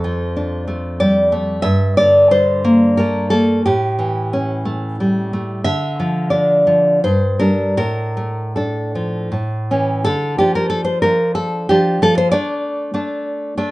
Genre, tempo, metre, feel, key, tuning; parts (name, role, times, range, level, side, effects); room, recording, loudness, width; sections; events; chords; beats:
romantic piece for solo classical guitar; 76-97 BPM; 3/4; rubato; D minor; A4 = 436 Hz
nylon-string guitar; solo; 0.0-13.7 s; F2 to E5; -14 LUFS; equal
moderate small room reverb, RT60 0.6 s; rough home demo mix, nothing above 10.3 kHz; -14 LUFS; side -19 dB against mid
0.0-10.1 A section; 10.1-13.7 B section
0.0 Dm/F; 1.6 Gm69; 3.6 A7; 5.6 Dm; 7.0 Gm; 7.8 Dm/A; 9.3 A; 10.1 Dm; 12.0 Dm/F
0.37 1.01 | 1.64 2.29 2.96 | 3.63 4.30 4.96 | 5.63 6.32 7.02 | 7.78 8.57 9.33 | 10.06 10.72 11.38 | 12.03 12.66 13.29